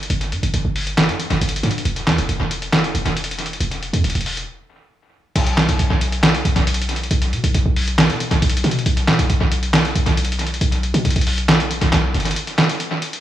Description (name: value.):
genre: hip hop, trap.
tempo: 137 BPM.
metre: 4/4.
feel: half-time.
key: unclear.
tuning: A4 = 439 Hz.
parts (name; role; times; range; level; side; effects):
short 808-style bass; bass; 0.0-12.4 s; E1 to B2; -20 LUFS; equal; none.
lo-fi sampler-style drum kit; drums; 0.0-13.2 s; crash cymbal, handclaps, hi-hat, snare drum; -18 LUFS; equal; tape echo.
room: light reverb.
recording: echo-heavy mix, studio reverb.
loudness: -16 LUFS.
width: side -12 dB against mid.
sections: 0.0-5.4 A section; 5.4-13.2 B section.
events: break 4.5-5.4, 12.4-13.2.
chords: none.